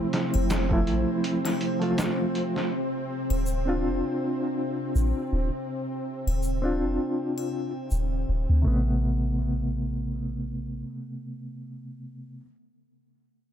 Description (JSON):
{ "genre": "trip hop", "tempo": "81 BPM", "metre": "4/4", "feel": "swing 55% on 16ths", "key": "A minor", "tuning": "A4 = 445 Hz", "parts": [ { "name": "reed electric piano", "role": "accompaniment", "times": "0.0-12.4 s", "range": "C3 to F4", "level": "-29 LUFS", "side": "equal", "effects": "overdrive, fast tremolo, low-pass filter, tape echo" }, { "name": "string machine, cellos", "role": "sustained chords", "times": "0.0-8.7 s", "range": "C4", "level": "-31 LUFS", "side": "equal", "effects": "ensemble chorus" }, { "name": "trip hop sampler-style drum kit", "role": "drums", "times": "0.1-2.7 s", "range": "hi-hat, kick drum, snare drum", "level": "-30 LUFS", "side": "equal", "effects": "none" }, { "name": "soft 808-style bass", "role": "bass", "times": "0.3-10.8 s", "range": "D1 to D2", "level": "-26 LUFS", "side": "equal", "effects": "none" }, { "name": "triangle and egg shaker", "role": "percussion", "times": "0.3-8.1 s", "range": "none", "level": "-43 LUFS", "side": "left 5 dB", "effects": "none" } ], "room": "little or no reverb", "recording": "none", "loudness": "-25 LUFS", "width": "side -10 dB against mid", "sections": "0.0-8.7 A section; 8.7-11.6 B section", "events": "none", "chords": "0.0 Fmaj7; 2.7 Dm7; 8.7 Amadd9" }